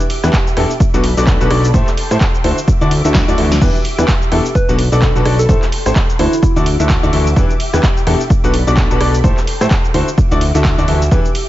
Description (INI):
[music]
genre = piano house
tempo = 128 BPM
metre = 4/4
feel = swing 58% on 16ths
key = unclear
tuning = A4 = 440 Hz
[part]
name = analog string pad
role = sustained chords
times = 0.0-11.5 s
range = F#4 to D6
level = -25 LUFS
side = left 1 dB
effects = ensemble chorus, vintage 12-bit sampler grit, sidechain pumping
[part]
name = punchy analog drum machine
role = drums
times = 0.0-11.5 s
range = cabasa, crash cymbal, handclaps, hi-hat, rim click, snare drum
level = -22 LUFS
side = right 1 dB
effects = none
[part]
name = clear grand piano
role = riff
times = 0.2-11.2 s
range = B2 to E5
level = -18 LUFS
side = left 1 dB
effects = vintage 12-bit sampler grit, sidechain pumping, tape echo
[part]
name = fat analog bass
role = bass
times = 0.2-11.2 s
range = A1 to A2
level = -15 LUFS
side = equal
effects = sidechain pumping
[part]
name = electronic kick drum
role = drums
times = 0.3-11.2 s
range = none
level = -14 LUFS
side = equal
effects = none
[part]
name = soft struck synth lead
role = melody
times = 4.6-6.6 s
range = E4 to B4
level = -21 LUFS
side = right 2 dB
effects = chorus, tape echo
[sound]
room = little or no reverb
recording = nothing above 7.7 kHz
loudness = -11 LUFS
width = side -14 dB against mid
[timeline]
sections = 0.0-11.5 A section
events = drum fill 3.1-3.6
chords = 0.0 Em7; 0.8 Bm7; 1.7 Am7; 2.4 Dadd9; 3.6 Em7; 4.6 Bm7; 5.5 Am7; 6.2 Dadd9; 7.4 Em7; 8.3 Bm7; 9.2 Am7; 9.9 Dadd9